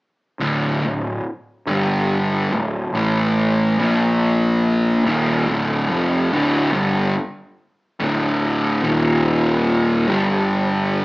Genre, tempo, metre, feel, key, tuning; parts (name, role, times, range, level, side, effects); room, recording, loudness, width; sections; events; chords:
metal; 71 BPM; 4/4; straight; D minor; A4 = 438 Hz
fuzz guitar; riff; 0.4-11.0 s; D2 to Bb3; -17 LUFS; equal; distortion
fuzz picked electric bass; bass; 0.4-11.0 s; D1 to Bb1; -24 LUFS; equal; overdrive
moderate large studio reverb, RT60 0.9 s; band playing live in one room, small speaker sound; -16 LUFS; side -21 dB against mid
0.4-7.2 A section; 7.2-11.0 B section
0.4 D5; 1.7 G5; 2.5 D5; 2.9 A5; 3.8 Bb5; 5.0 Dm; 7.2 D5; 8.8 Eb5; 10.1 G5